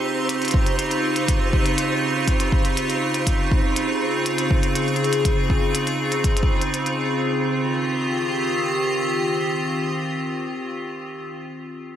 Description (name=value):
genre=IDM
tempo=121 BPM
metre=4/4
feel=straight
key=Eb mixolydian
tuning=A4 = 440 Hz
part: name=icy glass pad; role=sustained chords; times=0.0-10.9 s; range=Db3 to Ab4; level=-21 LUFS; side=equal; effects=chorus, built-in reverb, sidechain pumping
part: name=flickering grainy texture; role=texture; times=0.0-7.2 s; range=C5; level=-32 LUFS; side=right 2 dB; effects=built-in reverb
part: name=electronic hi-hat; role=drums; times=0.3-7.0 s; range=none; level=-28 LUFS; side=left 1 dB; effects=none
part: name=electronic kick drum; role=drums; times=0.5-6.5 s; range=none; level=-20 LUFS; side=equal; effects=none
room=light reverb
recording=none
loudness=-19 LUFS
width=side -10 dB against mid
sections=0.0-7.2 A section; 7.2-11.2 B section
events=none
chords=0.0 Dbmaj9#11; 7.2 Eb69